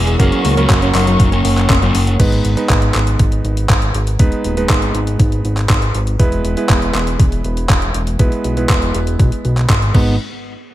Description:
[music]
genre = italo disco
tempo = 120 BPM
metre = 4/4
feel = straight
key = G# minor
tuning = A4 = 440 Hz
[part]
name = fuzz lead guitar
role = melody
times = 0.0-2.1, 9.9-10.1 s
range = F#3 to G#4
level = -20 LUFS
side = equal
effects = distortion, ping-pong delay
[part]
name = muted studio string section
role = sustained chords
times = 0.0-2.2 s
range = G#4 to E6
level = -23 LUFS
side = left 1 dB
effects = none
[part]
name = analog pluck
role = arpeggios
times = 0.0-2.1 s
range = F#3 to F#5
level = -24 LUFS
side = left 3 dB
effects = chorus, ping-pong delay
[part]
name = warm electric grand piano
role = stabs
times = 0.0-10.1 s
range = E3 to B4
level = -21 LUFS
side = right 2 dB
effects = low-pass filter, ping-pong delay
[part]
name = fat analog bass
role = bass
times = 0.0-10.2 s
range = D#1 to C#2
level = -17 LUFS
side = equal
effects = tube saturation
[part]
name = detuned 8-bit digital drum machine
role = drums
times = 0.1-10.0 s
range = crash cymbal, handclaps, hi-hat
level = -21 LUFS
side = equal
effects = gated reverb
[part]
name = electronic kick drum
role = drums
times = 0.2-10.0 s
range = none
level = -14 LUFS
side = equal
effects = none
[sound]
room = digital ambience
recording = none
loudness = -12 LUFS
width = side -14 dB against mid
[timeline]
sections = 0.0-2.2 A section; 2.2-10.2 B section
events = none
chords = 0.2 F#; 2.2 G#m; 6.2 E; 9.9 G#m; 10.2 N.C.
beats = | 0.20 0.70 1.20 1.70 | 2.20 2.70 3.20 3.70 | 4.20 4.70 5.20 5.70 | 6.20 6.70 7.20 7.70 | 8.20 8.70 9.20 9.70

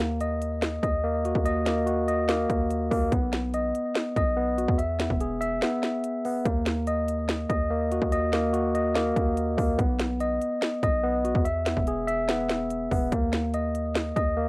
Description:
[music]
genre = hip hop, trap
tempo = 144 BPM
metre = 4/4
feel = half-time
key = Eb phrygian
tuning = A4 = 438 Hz
[part]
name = mellow tine electric piano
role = arpeggios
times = 0.0-14.5 s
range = Bb3 to E5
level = -25 LUFS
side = equal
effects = cassette tape, analog delay
[part]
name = hard-hitting 808-style bass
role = bass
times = 0.0-14.5 s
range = E1 to Fb2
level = -31 LUFS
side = equal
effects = none
[part]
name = trap drum kit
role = drums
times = 0.0-14.3 s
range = finger snaps, hi-hat, kick drum, snare drum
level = -28 LUFS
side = equal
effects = cassette tape
[sound]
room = light reverb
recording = home recording on cassette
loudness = -23 LUFS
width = side -23 dB against mid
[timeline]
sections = 0.0-6.5 A section; 6.5-14.5 A section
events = kick muted 5.6-6.5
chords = 0.0 Ebm; 3.1 B; 4.8 E; 6.5 Ebm; 9.8 B; 11.5 E; 13.1 Eb5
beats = 0.20 0.62 1.04 | 1.46 1.87 2.29 2.71 | 3.12 3.54 3.96 4.37 | 4.79 5.21 5.62 6.04 | 6.46 6.87 7.29 7.71 | 8.12 8.54 8.96 9.37 | 9.79 10.21 10.62 11.04 | 11.46 11.87 12.29 12.71 | 13.12 13.54 13.96 14.37

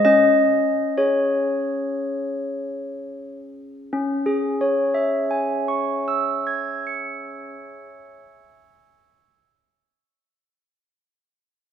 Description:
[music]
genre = classical, tune for handbells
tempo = 58-67 BPM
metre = 4/4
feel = straight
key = C# minor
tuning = A4 = 440 Hz
[part]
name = handbells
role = solo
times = 0.0-9.5 s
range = C#4 to C#7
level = -20 LUFS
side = left 1 dB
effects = none
[sound]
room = wet concert hall reverb, RT60 2.0 s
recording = minimal, uncompressed stereo recording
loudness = -20 LUFS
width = side -8 dB against mid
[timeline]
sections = 0.0-3.9 A section; 3.9-8.0 B section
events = slowing down 0.0-3.9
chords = 0.0 C#5; 3.9 C#m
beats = | 0.04 0.97 1.91 2.89 | 3.92 4.95 5.96 6.98

